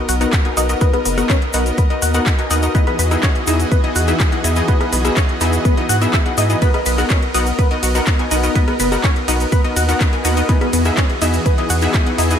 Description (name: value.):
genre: progressive house.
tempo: 124 BPM.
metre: 4/4.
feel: straight.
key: B major.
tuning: A4 = 440 Hz.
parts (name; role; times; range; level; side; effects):
supersaw pad; sustained chords; 0.0-12.4 s; E3 to D#5; -23 LUFS; right 1 dB; sidechain pumping.
wide unison pluck; stabs; 0.0-12.4 s; B3 to G#5; -21 LUFS; left 2 dB; sidechain pumping, ping-pong delay.
sub drop; sound effects; 0.0-0.8 s; none; barely audible; none; none.
tight sequenced synth; arpeggios; 0.1-12.2 s; B3 to F#5; -22 LUFS; equal; chorus, phaser, sidechain pumping, ping-pong delay.
round analog bass; bass; 0.1-12.4 s; F#1 to G#2; -18 LUFS; equal; sidechain pumping.
deep house drum kit; drums; 0.1-12.4 s; handclaps, hi-hat, ride cymbal, rim click; -24 LUFS; equal; overdrive.
tube shaker; percussion; 0.1-12.4 s; none; -27 LUFS; left 3 dB; none.
electronic kick drum; drums; 0.3-12.0 s; none; -16 LUFS; equal; none.
room: little or no reverb.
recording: none.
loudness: -14 LUFS.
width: side -8 dB against mid.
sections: 0.0-12.4 A section.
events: impact 0.0-0.8.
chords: 0.0 Bmaj7; 2.7 Emaj7; 6.6 Bmaj7; 10.5 Emaj7.